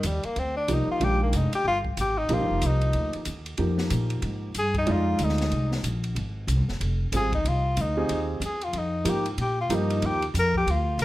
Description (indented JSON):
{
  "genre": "modal jazz",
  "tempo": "186 BPM",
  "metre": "4/4",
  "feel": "swing 62% on 8ths",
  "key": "F dorian",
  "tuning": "A4 = 440 Hz",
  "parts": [
    { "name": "mellow tenor saxophone", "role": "melody", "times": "0.0-11.0 s", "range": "G3 to Bb4", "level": "-27 LUFS", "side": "left 1 dB", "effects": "plate reverb" },
    { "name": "upright bass", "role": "bass", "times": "0.0-11.0 s", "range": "F1 to Bb2", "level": "-26 LUFS", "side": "equal", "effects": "none" },
    { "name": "open jazz drum kit", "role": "drums", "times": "0.0-11.0 s", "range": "hi-hat, kick drum, ride cymbal, snare drum", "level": "-35 LUFS", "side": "equal", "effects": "none" },
    { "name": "warm concert grand piano", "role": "accompaniment", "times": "0.7-10.2 s", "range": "Eb3 to D5", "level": "-29 LUFS", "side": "right 1 dB", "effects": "none" }
  ],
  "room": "moderate club reverb, RT60 0.8 s",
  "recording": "none",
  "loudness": "-23 LUFS",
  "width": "side -16 dB against mid",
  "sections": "0.0-11.0 A section",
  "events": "tenor saxophone solo 0.0-11.0",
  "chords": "0.0 Fm7; 8.7 Ebadd9"
}